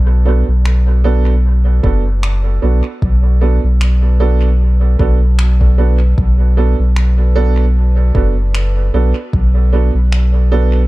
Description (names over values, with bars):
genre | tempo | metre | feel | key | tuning
ambient dub | 76 BPM | 4/4 | swing 56% on 16ths | B minor | A4 = 441 Hz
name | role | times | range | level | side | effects
warm sub bass | bass | 0.0-10.9 s | F#1 to B1 | -11 LUFS | equal | none
clear upright piano | stabs | 0.3-10.8 s | B3 to A4 | -21 LUFS | right 7 dB | dub echo
electronic finger snaps | drums | 0.7-10.3 s | none | -28 LUFS | equal | overdrive, small room reverb, dub echo
dark studio string section | sustained chords | 1.1-10.9 s | B4 | -37 LUFS | left 2 dB | none
electronic kick drum | drums | 1.8-9.5 s | none | -16 LUFS | equal | overdrive, small room reverb
room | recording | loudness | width
small room ambience | dark, warm production | -10 LUFS | side -19 dB against mid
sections
0.0-10.9 A section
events
none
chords
0.0 Bm7